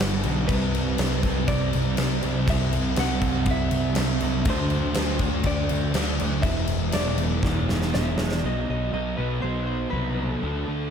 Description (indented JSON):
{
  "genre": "rock, shoegaze and dream pop",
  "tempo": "121 BPM",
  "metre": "4/4",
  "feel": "straight",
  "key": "unclear",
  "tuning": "A4 = 438 Hz",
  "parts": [
    { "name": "fuzz guitar", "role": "riff", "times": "0.0-10.9 s", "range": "E2 to D4", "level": "-26 LUFS", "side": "right 2 dB", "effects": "distortion, lush chorus" },
    { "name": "fuzz picked electric bass", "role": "bass", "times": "0.0-10.9 s", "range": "E1 to D2", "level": "-26 LUFS", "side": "equal", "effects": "overdrive" },
    { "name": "huge arena drum kit", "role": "drums", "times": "0.0-8.4 s", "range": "crash cymbal, kick drum, snare drum", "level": "-27 LUFS", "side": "equal", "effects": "none" },
    { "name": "direct-recorded clean electric guitar", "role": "melody", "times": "0.5-10.9 s", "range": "A4 to F#5", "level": "-32 LUFS", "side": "left 1 dB", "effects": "wide subtle chorus, diffuse ambient delay" }
  ],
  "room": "light reverb, small room ambience",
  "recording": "none",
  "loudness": "-22 LUFS",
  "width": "side -7 dB against mid",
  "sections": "0.0-8.4 A section; 8.4-10.9 B section",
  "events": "drum fill 7.4-8.4",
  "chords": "0.5 Cmaj9; 4.5 D5; 6.4 E5; 8.4 B5",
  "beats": "| 0.48 0.98 1.48 1.97 | 2.47 2.96 3.46 3.96 | 4.46 4.95 5.45 5.94 | 6.44 6.94 7.43 7.93 | 8.43 8.93 9.42 9.92 | 10.42"
}